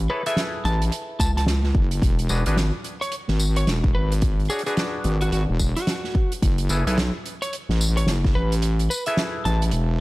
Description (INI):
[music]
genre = glitch hop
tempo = 109 BPM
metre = 4/4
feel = swing 61% on 16ths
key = F# minor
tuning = A4 = 440 Hz
[part]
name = wobble bass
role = bass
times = 0.0-10.0 s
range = E1 to C#2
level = -21 LUFS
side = equal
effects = chorus
[part]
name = lightly driven lead guitar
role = melody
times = 0.1-9.6 s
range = F#4 to A5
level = -30 LUFS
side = equal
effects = analog delay
[part]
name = auto-wah clav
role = stabs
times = 0.1-10.0 s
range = D4 to C#5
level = -30 LUFS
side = left 1 dB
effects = overdrive, sidechain pumping, analog delay
[part]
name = soft-mallet drum kit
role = drums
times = 0.3-9.9 s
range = hi-hat, snare drum, tambourine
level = -28 LUFS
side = right 1 dB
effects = none
[part]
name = electronic kick drum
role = drums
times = 1.2-8.3 s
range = none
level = -21 LUFS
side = equal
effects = none
[sound]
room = small room ambience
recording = dry, gritty hardware recording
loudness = -20 LUFS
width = side -20 dB against mid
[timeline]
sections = 0.0-10.0 A section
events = kick drops out 8.6-10.0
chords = 0.0 F#m11; 2.0 E7; 6.4 F#m11